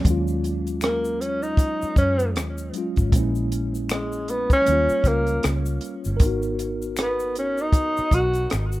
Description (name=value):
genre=R&B, neo-soul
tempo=78 BPM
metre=4/4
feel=swing 58% on 16ths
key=Eb minor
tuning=A4 = 440 Hz
part: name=mellow tine electric piano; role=accompaniment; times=0.0-8.8 s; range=Gb3 to Bb4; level=-28 LUFS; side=equal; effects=medium stereo tremolo
part: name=compact cocktail drum kit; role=drums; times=0.0-8.7 s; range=hi-hat, kick drum, rim click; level=-20 LUFS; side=equal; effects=none
part: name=vintage muted fingered electric bass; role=bass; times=0.1-8.8 s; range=G1 to Gb2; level=-26 LUFS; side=equal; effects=none
part: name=tube shaker and finger snaps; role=percussion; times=0.1-8.8 s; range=none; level=-39 LUFS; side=left 6 dB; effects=none
part: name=breathy tenor saxophone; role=melody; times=0.8-8.5 s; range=Ab3 to Gb4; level=-23 LUFS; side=equal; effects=tape echo
room=moderate studio reverb, RT60 0.5 s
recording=rough home demo mix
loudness=-20 LUFS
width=side -17 dB against mid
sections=0.0-8.8 A section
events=tenor saxophone solo 0.0-8.8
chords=0.0 Ebm11; 3.1 Bbm7b5; 4.7 Eb7; 6.2 Abm7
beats=| 0.05 0.82 1.59 2.36 | 3.12 3.90 4.66 5.43 | 6.20 6.97 7.74 8.51